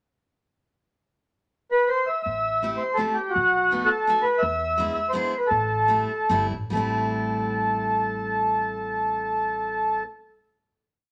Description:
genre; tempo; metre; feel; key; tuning
musette waltz; 134-172 BPM; 3/4; rubato; A minor; A4 = 436 Hz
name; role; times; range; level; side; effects
mellow accordion; melody; 1.7-10.0 s; F#4 to E5; -24 LUFS; equal; none
upright bass; bass; 2.3-10.0 s; G1 to E2; -36 LUFS; equal; none
picked steel-string acoustic guitar; accompaniment; 2.6-10.1 s; G3 to G4; -34 LUFS; equal; none
room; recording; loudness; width
moderate studio reverb, RT60 0.9 s; none; -24 LUFS; mono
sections
1.2-2.3 pickup bar; 2.3-6.7 A section; 6.7-9.3 final chord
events
slowing down 4.4-6.7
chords
1.2 N.C.; 2.3 Am7; 3.4 B7; 4.4 E7; 5.5 Am7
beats
| 1.18 1.54 1.90 | 2.26 2.63 2.99 | 3.36 3.71 4.07 | 4.43 4.78 5.13 | 5.50 5.88 6.29 | 6.73 7.17 7.60 | 8.03 8.46 8.90

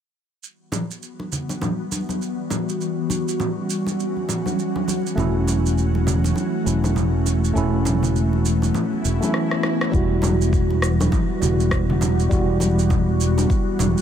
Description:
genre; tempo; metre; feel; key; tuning
organic downtempo; 101 BPM; 4/4; swing 60% on 16ths; E dorian; A4 = 440 Hz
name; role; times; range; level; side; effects
ethereal airy pad; sustained chords; 1.2-14.0 s; E3 to F#4; -25 LUFS; left 1 dB; ensemble chorus, built-in reverb, phaser, sidechain pumping
electronic shaker, congas and rim click; drums; 0.4-14.0 s; none; -27 LUFS; right 1 dB; none
congas; percussion; 0.7-13.9 s; none; -29 LUFS; equal; none
tine electric piano; accompaniment; 5.2-14.0 s; G3 to F#4; -24 LUFS; right 2 dB; medium stereo tremolo, vintage 12-bit sampler grit, sidechain pumping, low-pass filter, digital delay
fretless electric bass; bass; 5.2-13.9 s; E1; -20 LUFS; equal; none
swell; sound effects; 8.9-9.9 s; none; -35 LUFS; right 1 dB; none
electronic kick drum; drums; 9.9-13.6 s; none; -22 LUFS; equal; none
room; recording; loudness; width
light reverb; none; -18 LUFS; side -9 dB against mid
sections
0.4-9.9 A section; 9.9-14.0 B section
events
swell 8.9-9.9; drum fill 9.3-9.9; filter sweep on tine electric piano 9.9-14.0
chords
0.4 Emadd9; 5.2 F#m7/E; 9.9 Emadd9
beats
| 0.43 1.02 1.62 2.21 | 2.81 3.40 3.99 4.59 | 5.18 5.78 6.37 6.96 | 7.56 8.15 8.75 9.34 | 9.93 10.53 11.12 11.72 | 12.31 12.90 13.50

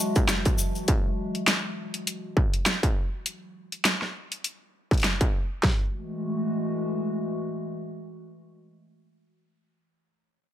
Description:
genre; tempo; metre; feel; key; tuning
glitch hop; 101 BPM; 4/4; swing 57% on 16ths; F# minor; A4 = 440 Hz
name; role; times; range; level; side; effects
warbly tape-like pad; sustained chords; 0.0-8.8 s; E3 to F#4; -31 LUFS; left 1 dB; chorus, built-in reverb, vintage 12-bit sampler grit, sidechain pumping
warbly tape-like pad; texture; 0.0-0.9 s; G#3 to A5; -38 LUFS; right 1 dB; chorus, built-in reverb, sidechain pumping
dubstep drum kit; drums; 0.2-5.8 s; kick drum, snare drum; -24 LUFS; equal; distortion
dubstep drum kit; drums; 0.2-5.3 s; hi-hat, snare drum; -25 LUFS; equal; none
cabasa; percussion; 0.2-0.9 s; none; -31 LUFS; left 4 dB; none
room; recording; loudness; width
digital ambience; none; -24 LUFS; side -11 dB against mid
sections
0.0-5.6 A section; 5.6-8.0 B section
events
none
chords
0.0 F#m9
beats
0.28 | 0.88 1.47 2.07 2.66 | 3.26 3.85 4.44 5.04 | 5.63 6.23 6.82 7.41

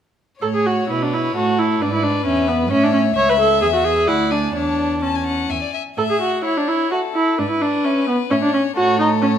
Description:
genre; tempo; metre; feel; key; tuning
quick classical-period movement for string quartet; 130 BPM; 3/4; rubato; A major; A4 = 439 Hz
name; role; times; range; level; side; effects
rich violin; melody; 0.4-9.4 s; A4 to A5; -25 LUFS; left 10 dB; none
warm violin; second line; 0.4-9.4 s; C#5 to A5; -25 LUFS; left 6 dB; none
rich viola; accompaniment; 0.4-9.3 s; B3 to C#5; -18 LUFS; right 1 dB; none
warm cello; bass; 0.4-9.4 s; C#2 to B2; -23 LUFS; right 5 dB; none
room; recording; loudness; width
moderate recital hall reverb, RT60 1.6 s; close, detailed microphones; -16 LUFS; side -9 dB against mid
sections
0.4-9.4 A section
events
none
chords
0.4 A; 1.8 E7/G#; 2.7 A; 3.2 C#m; 4.1 D; 4.5 A/E; 5.5 E; 6.0 A; 7.4 E/G#; 8.3 A; 8.8 F#m/A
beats
| 0.42 0.90 1.36 | 1.81 2.26 2.71 | 3.17 3.62 4.08 | 4.55 5.03 5.50 | 5.97 6.45 6.92 | 7.39 7.85 8.31 | 8.77 9.22

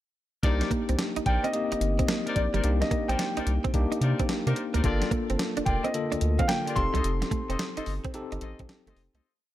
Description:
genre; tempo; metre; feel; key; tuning
R&B, new jack swing; 109 BPM; 4/4; swing 66% on 16ths; C dorian; A4 = 440 Hz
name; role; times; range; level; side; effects
bell-like tine electric piano; accompaniment; 0.4-9.3 s; D3 to A4; -31 LUFS; left 2 dB; fast stereo tremolo
mellow horn section; stabs; 0.4-9.3 s; Eb4 to Eb5; -37 LUFS; left 4 dB; ping-pong delay
round analog bass; bass; 0.4-9.2 s; F1 to C3; -27 LUFS; equal; none
clean 12-bit digital drum machine; drums; 0.4-9.2 s; hi-hat, kick drum, snare drum; -30 LUFS; equal; none
direct-recorded clean electric guitar; riff; 0.6-9.2 s; G3 to Eb4; -35 LUFS; right 7 dB; analog chorus
dark grand piano; melody; 1.3-8.6 s; D5 to C6; -31 LUFS; left 1 dB; ping-pong delay
room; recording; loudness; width
digital ambience; none; -24 LUFS; side -14 dB against mid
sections
0.4-9.2 verse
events
fade-out 7.0-9.2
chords
0.4 Cm9; 4.8 Gm7; 6.8 F7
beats
| 0.43 0.98 1.53 2.08 | 2.64 3.19 3.74 4.29 | 4.84 5.39 5.94 6.49 | 7.04 7.59 8.14 8.69

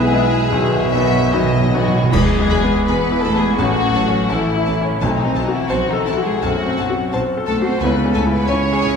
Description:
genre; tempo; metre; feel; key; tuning
classical, romantic movement for piano and orchestra; 72-90 BPM; 4/4; rubato; E major; A4 = 440 Hz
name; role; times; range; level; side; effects
clear concert grand piano; melody; 0.0-9.0 s; A1 to G#5; -19 LUFS; left 2 dB; none
warm studio violin section; melody; 0.0-8.9 s; G#4 to B5; -28 LUFS; left 2 dB; none
clear clarinet; second line; 0.0-1.7 s; B4; -29 LUFS; right 5 dB; none
hollow small flute group; second line; 0.0-1.7 s; G#5; -28 LUFS; left 3 dB; none
rich studio violin section; second line; 0.0-9.0 s; C#4 to E5; -22 LUFS; left 4 dB; none
warm studio viola section; accompaniment; 0.0-8.9 s; F#3 to A4; -28 LUFS; right 1 dB; none
mellow French horn section; sustained chords; 0.0-8.1 s; D#3 to E4; -27 LUFS; left 2 dB; none
warm trumpet; stabs; 0.0-1.7 s; F#4 to G#4; -28 LUFS; right 1 dB; none
mellow tuba; bass; 0.0-9.0 s; E1 to C#2; -27 LUFS; right 2 dB; none
warm studio cello section; bass; 0.0-9.0 s; B2 to C#4; -24 LUFS; right 2 dB; none
warm symphonic double bass section; bass; 0.0-8.9 s; A1 to E2; -27 LUFS; right 2 dB; none
timpani; percussion; 0.0-6.0 s; E2 to B2; -22 LUFS; right 4 dB; none
clash cymbals and concert bass drum; percussion; 2.1-3.6 s; none; -25 LUFS; equal; none
room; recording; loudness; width
wet scoring stage reverb, RT60 1.7 s; heard from further back in the room; -15 LUFS; side -6 dB against mid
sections
0.0-2.1 A section; 2.1-9.0 B section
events
timpani fill 0.5-2.1; band accent 2.1-2.9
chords
0.0 E/B; 0.5 B; 2.1 E; 3.6 A; 5.0 B7b9; 7.8 C#m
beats
0.52 1.32 | 2.12 2.87 3.58 4.29 | 5.00 5.70 6.42 7.12 | 7.80 8.47

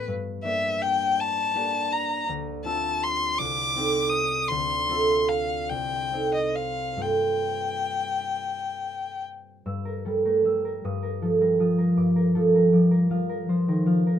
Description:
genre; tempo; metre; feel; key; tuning
classical, impressionist duo for violin and harp; 43-56 BPM (dotted quarters); 6/8; rubato; G minor; A4 = 440 Hz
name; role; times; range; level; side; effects
rich violin; melody; 0.0-9.2 s; Eb5 to Eb6; -26 LUFS; left 3 dB; none
concert harp; accompaniment; 0.0-14.2 s; C2 to E6; -23 LUFS; right 1 dB; none
room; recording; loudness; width
light reverb; close, detailed microphones; -22 LUFS; side -10 dB against mid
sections
0.0-9.7 A section; 9.7-14.2 B section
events
none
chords
0.1 Gm6; 2.3 Dm9; 3.4 Cm6; 4.5 Dm9; 5.7 Cm6; 7.0 Gm11; 9.7 Gm6; 10.8 F9sus4/G; 12.0 Gm7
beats
| 0.08 1.18 | 2.28 3.38 | 4.49 5.70 | 7.02 8.35 | 9.65 10.83 | 11.97 13.11

